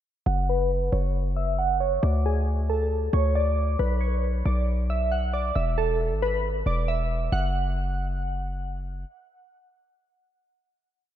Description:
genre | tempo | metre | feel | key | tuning
hip hop, trap | 136 BPM | 4/4 | half-time | F# minor | A4 = 439 Hz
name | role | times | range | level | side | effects
glassy digital keys | melody | 0.3-8.6 s | G#4 to F#5 | -27 LUFS | right 1 dB | chorus, phaser, low-pass filter, analog delay
hard-hitting 808-style bass | bass | 0.3-9.0 s | E1 to D2 | -25 LUFS | equal | none
room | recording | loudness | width
moderate lush hall reverb, RT60 2.9 s | dreamy mix soaked in reverb | -23 LUFS | side -11 dB against mid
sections
0.3-7.3 breakdown; 7.3-10.9 final note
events
filter sweep on synth keys 0.3-7.3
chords
0.3 F#5; 2.0 D5; 3.8 Bm; 5.6 E; 7.3 N.C.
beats
| 0.27 0.71 1.15 1.59 | 2.03 2.47 2.91 3.35 | 3.79 4.24 4.68 5.12 | 5.56 6.00 6.44 6.88 | 7.32 7.76 8.21 8.65

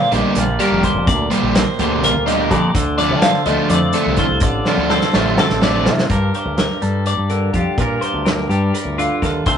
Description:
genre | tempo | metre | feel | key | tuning
math rock and midwest emo | 251 BPM (eighths) | 7/8 | straight | G minor | A4 = 440 Hz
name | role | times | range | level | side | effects
twangy electric guitar | accompaniment | 0.0-9.6 s | G2 to C5 | -22 LUFS | right 2 dB | none
twelve-string electric guitar | arpeggios | 0.0-9.6 s | F4 to F5 | -21 LUFS | left 2 dB | none
growling fingered electric bass | bass | 0.0-9.6 s | F1 to D3 | -20 LUFS | left 1 dB | overdrive
overdriven semi-hollow guitar | riff | 0.1-5.9 s | D3 to D4 | -19 LUFS | right 1 dB | none
loose indie drum kit | drums | 0.1-9.6 s | hi-hat, kick drum, snare drum | -20 LUFS | equal | none
room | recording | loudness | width
moderate small room reverb, RT60 0.5 s | rough rehearsal-room recording, nothing above 10.7 kHz | -14 LUFS | side -8 dB against mid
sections
0.0-6.1 A section; 6.1-9.6 B section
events
drum fill 4.7-6.1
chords
0.0 Gm7; 2.7 Dm7; 6.1 Gm9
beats
0.12 0.35 0.59 0.83 | 1.07 1.31 1.55 1.79 2.03 2.27 2.51 | 2.75 2.98 3.22 3.46 3.70 3.94 4.18 | 4.42 4.66 4.90 5.13 5.38 5.61 5.85 | 6.09 6.33 6.57 6.81 7.05 7.29 7.54 | 7.78 8.02 8.26 8.50 8.74 8.98 9.22 | 9.46

